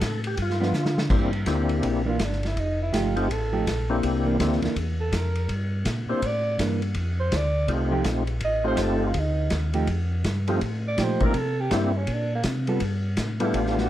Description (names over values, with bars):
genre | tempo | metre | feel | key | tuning
soul jazz organ trio | 164 BPM | 4/4 | swing 63% on 8ths | C mixolydian | A4 = 439 Hz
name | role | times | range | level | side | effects
overdriven tonewheel organ | melody | 0.0-13.9 s | A3 to Bb4 | -27 LUFS | left 2 dB | slow rotary speaker, chorus vibrato, plate reverb
mellow tonewheel organ | bass | 0.0-13.9 s | F1 to D3 | -26 LUFS | equal | slow rotary speaker
vintage drum kit | drums | 0.0-13.9 s | crash cymbal, hi-hat, kick drum, ride cymbal, snare drum | -30 LUFS | equal | none
hollow-body jazz guitar | accompaniment | 0.6-13.5 s | E3 to A4 | -28 LUFS | right 3 dB | none
breathy alto saxophone | melody | 2.1-13.9 s | Bb3 to Eb5 | -29 LUFS | right 2 dB | plate reverb
room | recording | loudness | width
moderate club reverb, RT60 0.6 s | dark, warm production | -22 LUFS | side -13 dB against mid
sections
0.0-1.1 A section; 1.1-13.9 A section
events
tonewheel organ solo 0.0-1.1; drum fill 0.7-1.1; alto saxophone solo 1.1-13.9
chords
0.4 G7; 1.1 C9; 2.6 F9; 4.0 C9; 7.0 F9; 11.3 C9; 12.8 G9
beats
0.01 0.38 0.74 | 1.11 1.47 1.84 2.20 | 2.57 2.93 3.30 3.67 | 4.03 4.40 4.76 5.13 | 5.49 5.86 6.22 6.59 | 6.96 7.32 7.69 8.05 | 8.42 8.79 9.15 9.52 | 9.88 10.25 10.62 10.98 | 11.35 11.71 12.08 12.45 | 12.81 13.18 13.54